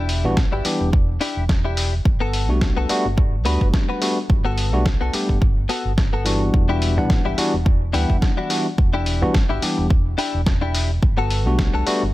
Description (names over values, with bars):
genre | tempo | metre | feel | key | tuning
nu-disco, nu disco | 107 BPM | 4/4 | swing 56% on 16ths | E minor | A4 = 440 Hz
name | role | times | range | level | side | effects
direct-recorded clean electric guitar | riff | 0.0-12.1 s | B3 to B4 | -27 LUFS | left 4 dB | analog chorus, tape echo
fingered electric bass | bass | 0.0-12.1 s | E1 to D2 | -22 LUFS | equal | none
dusty soul sampler-style drum kit | drums | 0.1-12.0 s | hi-hat, snare drum | -26 LUFS | left 1 dB | overdrive
barky tine electric piano | accompaniment | 0.2-12.0 s | E3 to F#5 | -24 LUFS | left 1 dB | sidechain pumping, tape echo
electronic kick drum | drums | 0.4-11.7 s | none | -18 LUFS | equal | none
room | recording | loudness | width
little or no reverb | none | -17 LUFS | side -17 dB against mid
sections
0.0-12.1 A section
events
none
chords
0.0 Em7; 2.1 Gmaj9; 6.5 Em7; 11.0 Gmaj9